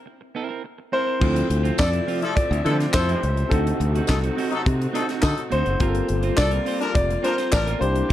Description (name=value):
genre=disco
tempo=104 BPM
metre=4/4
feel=straight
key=unclear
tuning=A4 = 440 Hz
part: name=clean electric guitar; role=accompaniment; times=0.1-8.1 s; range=F3 to C5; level=-30 LUFS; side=right 7 dB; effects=none
part: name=clear concert grand piano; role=melody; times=0.9-8.1 s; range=A4 to D5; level=-26 LUFS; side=left 1 dB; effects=none
part: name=barky tine electric piano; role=accompaniment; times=1.2-8.1 s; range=Bb3 to A4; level=-30 LUFS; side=left 6 dB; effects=fast stereo tremolo
part: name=clear studio string section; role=sustained chords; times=1.2-8.1 s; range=C3 to E5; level=-33 LUFS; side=equal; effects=none
part: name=modern bright fingered electric bass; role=bass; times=1.2-8.1 s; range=F1 to D3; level=-23 LUFS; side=equal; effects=none
part: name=tight funk drum kit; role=drums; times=1.2-8.1 s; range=crash cymbal, handclaps, hi-hat, kick drum, snare drum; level=-24 LUFS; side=equal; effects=none
part: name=warm horn section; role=stabs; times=1.8-7.7 s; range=F3 to Bb4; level=-30 LUFS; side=left 4 dB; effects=none
part: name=tambourine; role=percussion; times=1.8-7.7 s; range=none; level=-36 LUFS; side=right 16 dB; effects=none
room=small room ambience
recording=none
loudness=-19 LUFS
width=side -12 dB against mid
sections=0.0-1.2 A section; 1.2-8.1 B section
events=break 0.1-1.2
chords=0.0 C7; 1.2 Dm9; 3.5 D7b9; 5.8 Gm11